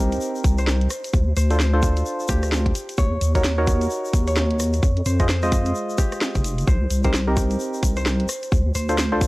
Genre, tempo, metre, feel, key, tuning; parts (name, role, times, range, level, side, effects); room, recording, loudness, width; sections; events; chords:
UK garage, two-step garage; 130 BPM; 4/4; swing 60% on 16ths; A4 = 440 Hz
Celtic harp; melody; 0.0-9.3 s; G4 to Db5; -30 LUFS; equal
percussive organ stab; stabs; 0.0-9.3 s; Ab3 to Eb5; -26 LUFS; equal; chorus, cassette tape, analog delay
deep soft wobble bass; bass; 0.0-9.3 s; F1 to F2; -21 LUFS; equal; chorus
garage drum kit; drums; 0.1-9.3 s; hi-hat, rim click, snare drum; -26 LUFS; equal; overdrive
egg shaker; percussion; 0.1-9.3 s; -34 LUFS; left 3 dB
electronic kick drum; drums; 0.4-9.3 s; -20 LUFS; equal; overdrive
digital ambience; dry, gritty hardware recording, transformer saturation, cassette tape; -18 LUFS; side -21 dB against mid
0.0-9.3 A section
0.0 Cm7; 0.9 Dm7; 2.8 Ebm7; 4.8 Fm7; 6.7 Cm7; 8.3 Dm7